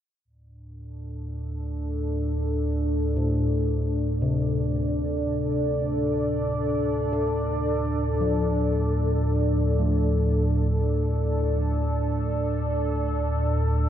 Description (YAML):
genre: dark ambient drone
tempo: free time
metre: none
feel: none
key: D minor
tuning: A4 = 440 Hz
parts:
  - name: deep rumbling drone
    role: drone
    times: 0.7-13.9 s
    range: D2 to A2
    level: -26 LUFS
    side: equal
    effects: built-in reverb
  - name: deep dark ambient pad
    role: sustained chords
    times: 1.2-13.9 s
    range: D4 to D5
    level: -27 LUFS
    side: equal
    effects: chorus, built-in reverb
  - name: gamelan-type bossed gongs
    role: arpeggios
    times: 3.2-13.9 s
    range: A2 to A4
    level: -30 LUFS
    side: left 2 dB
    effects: tape echo
room: wet huge ambient reverb, RT60 7.6 s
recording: worn, warbling old tape, cassette tape, warbly pitch drift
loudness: -23 LUFS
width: side -10 dB against mid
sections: 0.2-13.9 A section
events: none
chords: 0.2 Dm